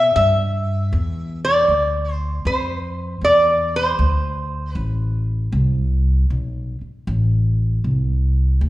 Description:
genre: acoustic country blues, solo or duo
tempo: 78 BPM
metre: 4/4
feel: swing 66% on 8ths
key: A minor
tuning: A4 = 440 Hz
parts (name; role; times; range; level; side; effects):
- lap resonator guitar; melody; 0.0-5.2 s; C5 to E5; -17 LUFS; equal; none
- upright bass; bass; 0.0-8.7 s; A1 to B2; -19 LUFS; equal; none
room: wet recital hall reverb, RT60 1.5 s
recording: recorded in a church or concert hall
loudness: -17 LUFS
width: side -16 dB against mid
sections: 0.0-8.7 A section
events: none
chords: 0.0 A7(no3) (rootless); 1.7 Dm9; 4.8 Amadd9

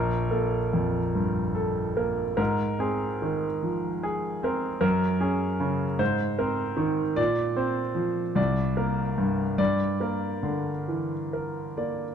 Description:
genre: classical, impressionist solo piano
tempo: 50 BPM (dotted quarters)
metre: 6/8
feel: uneven beats, rubato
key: unclear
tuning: A4 = 440 Hz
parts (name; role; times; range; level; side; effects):
- clear concert grand piano; solo; 0.0-12.1 s; Bb1 to D5; -24 LUFS; equal; none
room: moderate concert hall reverb, RT60 1.9 s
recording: close, detailed microphones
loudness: -24 LUFS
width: side -8 dB against mid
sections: 0.0-12.1 A section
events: none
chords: 0.0 Bb5; 2.4 Abadd9; 4.8 Gbadd9; 6.0 Abadd9; 7.2 Bbadd9; 8.4 Csus2; 9.6 Gm

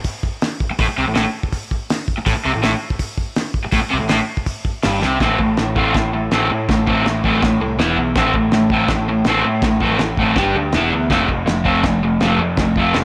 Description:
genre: garage rock duo or trio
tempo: 163 BPM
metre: 4/4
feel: straight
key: A minor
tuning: A4 = 440 Hz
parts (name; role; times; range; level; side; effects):
- cloth-damped thuddy drum kit; drums; 0.0-13.0 s; crash cymbal, hi-hat, kick drum, snare drum; -24 LUFS; equal; none
- raw garage guitar; riff; 0.7-13.0 s; G2 to G4; -19 LUFS; equal; overdrive, spring reverb
- growling picked electric bass; bass; 0.7-13.0 s; E1 to A2; -26 LUFS; equal; overdrive
room: light reverb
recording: none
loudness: -18 LUFS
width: mono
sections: 0.0-5.2 A section; 5.2-13.0 B section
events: drum fill 5.0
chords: 0.0 Am; 7.8 E5; 8.2 Am; 10.4 G5; 10.7 E5; 11.1 F

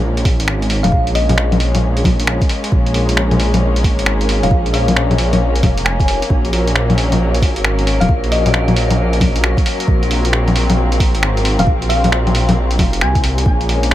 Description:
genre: future garage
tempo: 134 BPM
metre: 4/4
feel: swing 64% on 16ths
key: unclear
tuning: A4 = 440 Hz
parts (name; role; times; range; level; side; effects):
- muted studio string section; sustained chords; 0.0-13.9 s; Gb3 to Db4; -21 LUFS; left 2 dB; sidechain pumping
- swelling detuned saw bass; bass; 0.0-13.9 s; F1 to C2; -16 LUFS; equal; sidechain pumping
- electronic kick drum; drums; 0.2-13.6 s; none; -16 LUFS; equal; overdrive
- lo-fi sampler-style drum kit; drums; 0.2-13.9 s; bongos, finger snaps, hi-hat; -18 LUFS; left 1 dB; overdrive
- thumb-piano-like synth pluck; melody; 0.8-1.5, 4.4-8.7, 11.6-13.5 s; Eb5 to Ab5; -24 LUFS; left 1 dB; analog chorus, dub echo
- drifting glass-harmonics texture; texture; 7.1-13.5 s; Bb4; -29 LUFS; right 2 dB; chorus, built-in reverb
room: light reverb, digital ambience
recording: none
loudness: -12 LUFS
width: side -13 dB against mid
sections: 0.0-13.5 A section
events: none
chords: 0.0 Bbm7; 6.3 Gb

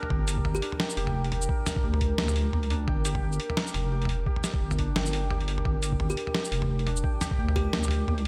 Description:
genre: half-time drum and bass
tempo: 173 BPM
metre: 4/4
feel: swing 57% on 16ths, half-time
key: G minor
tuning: A4 = 440 Hz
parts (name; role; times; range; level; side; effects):
- deep dark ambient pad; sustained chords; 0.0-8.3 s; Bb4; -40 LUFS; equal; chorus, built-in reverb, sidechain pumping
- santur; arpeggios; 0.0-8.3 s; D4 to G5; -40 LUFS; equal; vintage 12-bit sampler grit, analog delay
- boom bap sampler-style drum kit; drums; 0.0-8.3 s; hi-hat, shaker, snare drum, toms; -34 LUFS; equal; none
- deep soft wobble bass; bass; 0.1-8.3 s; F1 to D2; -30 LUFS; equal; chorus
- electronic kick drum; drums; 0.1-7.6 s; none; -32 LUFS; equal; none
- kalimba; melody; 0.5-0.8, 6.1-7.8 s; G4; -40 LUFS; equal; analog delay
room: light reverb, digital ambience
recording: none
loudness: -28 LUFS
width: mono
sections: 0.0-8.3 A section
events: none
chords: 0.0 Gm

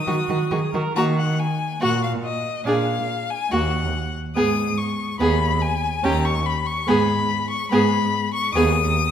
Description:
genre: quick classical-period movement for string quartet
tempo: 142 BPM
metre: 4/4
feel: straight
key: Eb minor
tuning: A4 = 440 Hz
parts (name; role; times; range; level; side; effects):
- rich violin; melody; 0.0-9.1 s; Eb5 to Eb6; -24 LUFS; left 6 dB; none
- warm viola; accompaniment; 0.0-8.7 s; Bb3 to Bb4; -27 LUFS; right 3 dB; none
- warm violin; second line; 0.1-8.7 s; Gb4 to Ab4; -25 LUFS; equal; none
- warm cello; bass; 0.1-8.9 s; Eb2 to Eb3; -24 LUFS; right 2 dB; none
room: moderate concert hall reverb, RT60 1.9 s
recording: minimal, uncompressed stereo recording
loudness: -19 LUFS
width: side -9 dB against mid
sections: 1.0-9.1 A section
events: none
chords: 0.0 Ebm; 2.7 Bb7; 3.5 Ebm; 4.4 Abm; 6.0 Eb7; 6.9 Abm; 7.7 G#m

